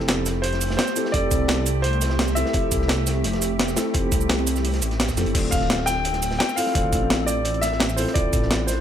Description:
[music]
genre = liquid drum and bass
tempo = 171 BPM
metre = 4/4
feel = straight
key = unclear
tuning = A4 = 442 Hz
[part]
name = warm grand piano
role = melody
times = 0.0-8.8 s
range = A4 to G5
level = -26 LUFS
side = equal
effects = tape echo
[part]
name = felt-muted upright piano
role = accompaniment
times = 0.0-8.8 s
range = C4 to A4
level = -29 LUFS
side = left 2 dB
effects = digital delay
[part]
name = glassy FM pad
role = sustained chords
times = 0.0-8.8 s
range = A3 to G4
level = -30 LUFS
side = equal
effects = ensemble chorus, built-in reverb, sidechain pumping
[part]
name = dark detuned saw bass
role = bass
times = 0.0-8.8 s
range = D1 to F2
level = -25 LUFS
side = equal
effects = none
[part]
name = crunchy breakbeat drum kit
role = drums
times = 0.0-8.8 s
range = hi-hat, snare drum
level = -32 LUFS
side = equal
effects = high-pass filter on hats, studio ambience, high-pass filter on snare, high-pass filter on room
[part]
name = breakbeat sampler-style drum kit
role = drums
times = 0.1-8.8 s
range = crash cymbal, hi-hat, shaker, snare drum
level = -25 LUFS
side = right 1 dB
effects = studio ambience
[part]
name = electronic kick drum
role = drums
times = 1.1-8.4 s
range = none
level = -25 LUFS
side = equal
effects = studio ambience
[sound]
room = light reverb, small room ambience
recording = none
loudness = -19 LUFS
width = side -10 dB against mid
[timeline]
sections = 0.0-8.8 A section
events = none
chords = 0.0 Fmaj9; 5.3 Dm9

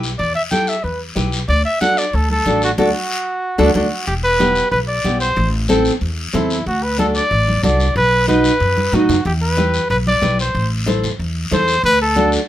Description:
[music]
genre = latin, cumbia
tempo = 185 BPM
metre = 4/4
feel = straight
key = E minor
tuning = A4 = 439 Hz
[part]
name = flamenco guitar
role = accompaniment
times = 0.0-12.4 s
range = B3 to C5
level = -18 LUFS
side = equal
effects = none
[part]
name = upright bass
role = bass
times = 0.0-12.4 s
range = E1 to A2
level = -20 LUFS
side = equal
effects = none
[part]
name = guiro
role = percussion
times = 0.0-12.5 s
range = none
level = -27 LUFS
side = left 4 dB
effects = none
[part]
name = warm trumpet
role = melody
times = 0.2-12.3 s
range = E4 to G5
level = -17 LUFS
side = equal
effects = none
[part]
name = congas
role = percussion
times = 0.5-12.3 s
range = none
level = -24 LUFS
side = equal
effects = none
[sound]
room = light reverb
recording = minimal, uncompressed stereo recording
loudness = -14 LUFS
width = side -12 dB against mid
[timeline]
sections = 0.0-4.1 A section; 4.1-12.5 B section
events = band accent 2.8-4.1; drum fill 8.8-9.3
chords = 0.0 Em; 1.5 D; 4.1 Em; 5.4 Am; 6.7 D; 8.0 B; 9.3 Em; 10.5 Am; 11.8 D

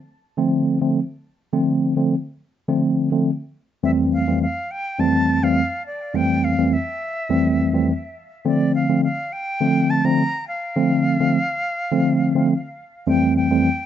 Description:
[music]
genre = afrobeats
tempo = 104 BPM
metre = 4/4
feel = straight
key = F major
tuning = A4 = 440 Hz
[part]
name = mellow tine electric piano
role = accompaniment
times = 0.4-13.7 s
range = F2 to C4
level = -17 LUFS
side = equal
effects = medium stereo tremolo
[part]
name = bright reedy concert flute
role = melody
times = 3.8-13.9 s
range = D5 to Bb5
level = -25 LUFS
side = equal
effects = analog delay
[sound]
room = wet studio reverb, RT60 0.5 s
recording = rough home demo mix, nothing above 7.7 kHz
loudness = -18 LUFS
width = side -10 dB against mid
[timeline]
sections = 0.0-3.8 A section; 3.8-13.1 B section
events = none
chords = 0.0 Dm7; 3.8 Fmaj9; 8.5 Dm7; 13.1 Fmaj9

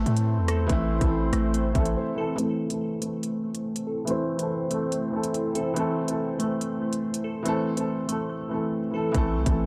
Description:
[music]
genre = hip hop, drill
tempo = 142 BPM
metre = 4/4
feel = half-time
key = A minor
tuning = A4 = 440 Hz
[part]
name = dark concert grand piano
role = accompaniment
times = 0.0-9.7 s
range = E3 to E5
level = -31 LUFS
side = equal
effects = low-pass filter
[part]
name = deep dark ambient pad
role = sustained chords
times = 0.0-9.1 s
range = A3 to C5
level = -36 LUFS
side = equal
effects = chorus, built-in reverb, low-pass filter
[part]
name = glassy digital keys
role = arpeggios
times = 0.0-9.7 s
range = A3 to A4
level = -33 LUFS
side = equal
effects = chorus, low-pass filter, digital delay
[part]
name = hard-hitting 808-style bass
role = bass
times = 0.0-2.0, 9.1-9.7 s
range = A1 to A2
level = -28 LUFS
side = equal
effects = none
[part]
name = drill drum kit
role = drums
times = 0.1-9.6 s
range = hi-hat, kick drum, rim click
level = -30 LUFS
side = equal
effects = none
[sound]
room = light reverb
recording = dark, warm production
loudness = -27 LUFS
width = mono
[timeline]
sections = 0.0-2.4 A section; 2.4-9.1 B section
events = break 2.0-2.4; filter sweep 2.4-9.1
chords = 0.0 Am

